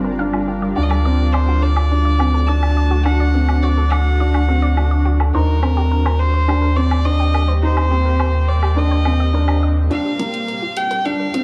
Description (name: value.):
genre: piano and strings electronica.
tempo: 105 BPM.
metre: 4/4.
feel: straight.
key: G minor.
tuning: A4 = 436 Hz.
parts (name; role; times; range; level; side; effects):
granular cloud pad; sustained chords; 0.0-11.4 s; G3 to Bb4; -28 LUFS; equal; built-in reverb.
analog pluck; arpeggios; 0.0-11.4 s; F4 to C6; -32 LUFS; equal; chorus, tape echo.
felt-muted upright piano; riff; 0.0-11.4 s; Bb3 to Eb4; -25 LUFS; equal; tape echo.
warm sub bass; bass; 0.0-9.9 s; G1 to Eb2; -18 LUFS; equal; none.
electronic woodblock and hi-hat; drums; 0.3-11.4 s; none; -29 LUFS; equal; high-pass filter on perc, low-pass filter on perc, high-pass filter on hats, low-pass filter on hats.
clear violin; melody; 0.8-11.4 s; Bb4 to A5; -26 LUFS; equal; none.
room: light reverb.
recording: small room ambience.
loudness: -17 LUFS.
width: mono.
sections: 0.0-9.9 A section; 9.9-11.4 B section.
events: filter sweep on synth arpeggio sound 0.0-9.9; build-up 9.9-11.4; filter sweep on ambient pad 9.9-11.4.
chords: 0.0 Gm7; 0.8 D; 5.3 Eb6; 9.9 Gm7.